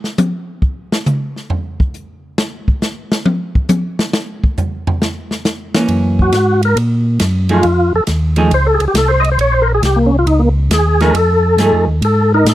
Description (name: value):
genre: soul jazz organ trio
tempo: 137 BPM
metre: 4/4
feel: swing 68% on 8ths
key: unclear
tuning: A4 = 441 Hz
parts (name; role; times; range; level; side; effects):
- swinging big-band drum kit; drums; 0.0-12.5 s; hi-hat, kick drum, ride cymbal, snare drum, toms; -16 LUFS; equal; none
- vintage hollow-body jazz guitar; accompaniment; 5.8-11.9 s; E3 to Ab4; -15 LUFS; right 2 dB; none
- mellow tonewheel organ; bass; 5.9-12.5 s; Bb1 to Bb2; -14 LUFS; equal; overdrive, chorus vibrato, slow rotary speaker
- percussive tonewheel organ; melody; 6.2-12.5 s; Bb3 to Eb5; -13 LUFS; equal; slow rotary speaker, chorus vibrato
room: small room ambience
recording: dry, close 1970s-style studio recording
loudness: -12 LUFS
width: side -14 dB against mid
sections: 0.0-12.5 A section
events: tonewheel organ solo 0.0-12.5; drum solo 0.0-5.9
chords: 0.0 N.C.; 2.4 Bbm; 5.9 Gb7; 7.6 F7; 9.4 Bbm7; 11.1 F7#9